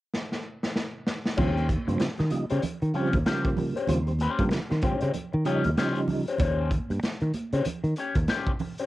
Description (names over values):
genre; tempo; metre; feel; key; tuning
funk; 96 BPM; 4/4; swing 60% on 16ths; Eb mixolydian; A4 = 441 Hz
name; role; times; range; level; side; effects
raw garage drum kit; drums; 0.1-8.9 s; crash cymbal, hi-hat, kick drum, snare drum; -29 LUFS; equal; none
electric guitar at the edge of break-up; accompaniment; 1.4-8.9 s; Db4 to Db5; -30 LUFS; left 4 dB; wah, cassette tape
percussive tonewheel organ; stabs; 1.4-6.3 s; Db3 to Eb4; -28 LUFS; right 2 dB; chorus vibrato, fast rotary speaker, cassette tape
fingered electric bass; bass; 1.4-8.2 s; Eb2 to Eb3; -26 LUFS; equal; none
congas; percussion; 1.4-8.8 s; none; -36 LUFS; right 4 dB; none
room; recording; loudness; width
light reverb, small room reverb; home recording on cassette; -24 LUFS; side -16 dB against mid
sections
0.0-1.4 A section; 1.4-8.9 B section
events
drum fill 0.1-1.4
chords
0.0 N.C.; 1.4 Eb13